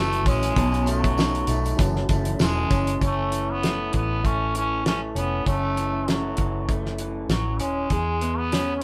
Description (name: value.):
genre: indie pop, bedroom pop.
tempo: 98 BPM.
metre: 4/4.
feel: swing 55% on 16ths.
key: F# dorian.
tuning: A4 = 440 Hz.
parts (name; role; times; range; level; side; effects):
trombone with metal mute; melody; 0.0-8.8 s; F#3 to C#4; -30 LUFS; equal; none.
electric guitar through a small old amp; accompaniment; 0.0-8.8 s; F#2 to G#4; -30 LUFS; equal; vibrato effect.
mellow tine electric piano; accompaniment; 0.0-3.0 s; E3 to A5; -32 LUFS; equal; overdrive.
vintage muted fingered electric bass; bass; 0.0-8.8 s; D#1 to E2; -30 LUFS; equal; none.
damped 70s drum kit; drums; 0.1-8.8 s; hi-hat, kick drum, snare drum; -27 LUFS; equal; none.
tambourine; percussion; 0.3-2.9 s; none; -45 LUFS; equal; none.
room: wet studio ambience, RT60 0.5 s.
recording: band playing live in one room.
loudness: -24 LUFS.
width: mono.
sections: 0.0-3.0 A section; 3.0-8.8 B section.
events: none.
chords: 0.0 F#m7; 0.6 B9; 1.8 F#m7; 7.9 C#m7.